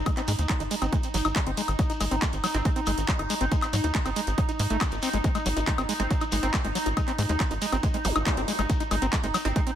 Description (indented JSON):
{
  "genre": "psychedelic trance",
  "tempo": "139 BPM",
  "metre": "4/4",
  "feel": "straight",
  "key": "G# major",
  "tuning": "A4 = 439 Hz",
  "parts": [
    { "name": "pulsing gated texture", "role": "sustained chords", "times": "0.0-9.8 s", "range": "D#4", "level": "-31 LUFS", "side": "right 1 dB", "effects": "chorus, built-in reverb, sidechain pumping" },
    { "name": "tight sequencer bass", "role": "bass", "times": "0.0-9.5 s", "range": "G#1 to G#2", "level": "-28 LUFS", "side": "equal", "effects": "none" },
    { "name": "overdriven acid bass", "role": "riff", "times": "0.1-9.7 s", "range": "F#3 to D#4", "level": "-31 LUFS", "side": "moving between left 6 dB and right 6 dB", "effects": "distortion, auto-pan, sidechain pumping, digital delay" },
    { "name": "electronic kick drum", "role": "drums", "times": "0.1-9.6 s", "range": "none", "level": "-27 LUFS", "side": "equal", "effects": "none" },
    { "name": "techno drum kit", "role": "drums", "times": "0.1-9.8 s", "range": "handclaps, hi-hat, woodblock", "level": "-31 LUFS", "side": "left 1 dB", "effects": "none" },
    { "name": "shekere", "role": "percussion", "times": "0.1-9.8 s", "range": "none", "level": "-38 LUFS", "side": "left 4 dB", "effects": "none" },
    { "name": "metallic wobble bass", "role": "second line", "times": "2.5-2.7, 6.0-6.6, 9.5-9.6 s", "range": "B#3", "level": "-39 LUFS", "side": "right 2 dB", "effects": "lush chorus, cassette tape, sidechain pumping, high-pass filter, digital delay" },
    { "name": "zap", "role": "sound effects", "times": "8.0-8.2 s", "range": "none", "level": "-37 LUFS", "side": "equal", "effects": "none" }
  ],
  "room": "little or no reverb",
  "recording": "none",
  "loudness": "-24 LUFS",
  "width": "side -10 dB against mid",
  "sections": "0.0-9.8 A section",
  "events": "filter sweep on acid bass 0.0-9.8",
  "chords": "0.0 G#5",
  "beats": "| 0.06 0.49 0.93 1.36 | 1.79 2.22 2.65 3.08 | 3.52 3.95 4.38 4.81 | 5.24 5.67 6.11 6.54 | 6.97 7.40 7.83 8.26 | 8.70 9.13 9.56"
}